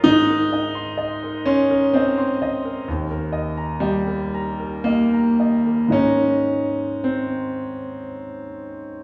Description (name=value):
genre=classical, impressionist solo piano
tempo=54-66 BPM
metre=3/4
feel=rubato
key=unclear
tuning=A4 = 440 Hz
part: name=clear concert grand piano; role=solo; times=0.0-9.0 s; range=Eb2 to C6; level=-21 LUFS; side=equal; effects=none
room=wet scoring stage reverb, RT60 2.0 s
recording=heard from further back in the room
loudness=-21 LUFS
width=mono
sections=0.0-9.0 A section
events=none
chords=0.1 Abadd9; 2.9 Eb; 5.9 Abadd9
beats=| 0.08 1.01 1.96 | 2.88 3.84 4.86 | 5.92 7.04 8.14